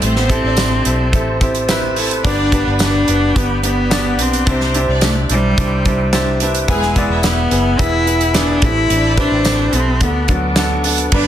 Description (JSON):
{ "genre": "piano-driven pop", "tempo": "108 BPM", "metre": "4/4", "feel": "straight", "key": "G major", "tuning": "A4 = 438 Hz", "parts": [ { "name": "rich cello", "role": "melody", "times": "0.0-11.3 s", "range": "F#3 to E4", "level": "-18 LUFS", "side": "equal", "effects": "none" }, { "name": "rich studio violin section", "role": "second line", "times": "0.0-11.3 s", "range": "B3 to G#5", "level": "-24 LUFS", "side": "equal", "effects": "none" }, { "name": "bright upright piano", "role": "accompaniment", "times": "0.0-11.3 s", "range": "G2 to D5", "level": "-20 LUFS", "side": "equal", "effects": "none" }, { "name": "tonewheel organ", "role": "sustained chords", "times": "0.0-11.3 s", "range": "B4 to E6", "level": "-27 LUFS", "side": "equal", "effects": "chorus vibrato, slow rotary speaker" }, { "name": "vintage muted fingered electric bass", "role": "bass", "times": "0.0-11.3 s", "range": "E1 to D2", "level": "-19 LUFS", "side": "equal", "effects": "none" }, { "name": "natural country drum kit", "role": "drums", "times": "0.0-11.3 s", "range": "crash cymbal, hi-hat, kick drum, snare drum", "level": "-18 LUFS", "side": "right 1 dB", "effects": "soft clipping on kick" }, { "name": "tambourine", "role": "percussion", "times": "0.6-10.7 s", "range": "none", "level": "-28 LUFS", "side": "left 7 dB", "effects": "none" } ], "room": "moderate large studio reverb, RT60 0.9 s, small room ambience", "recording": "dense, heavily limited modern master", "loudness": "-13 LUFS", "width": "side -10 dB against mid", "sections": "0.0-11.1 A section", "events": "none", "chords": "0.0 Am7; 2.2 G; 4.5 Cadd9; 6.7 E; 8.6 Am7; 10.0 D6" }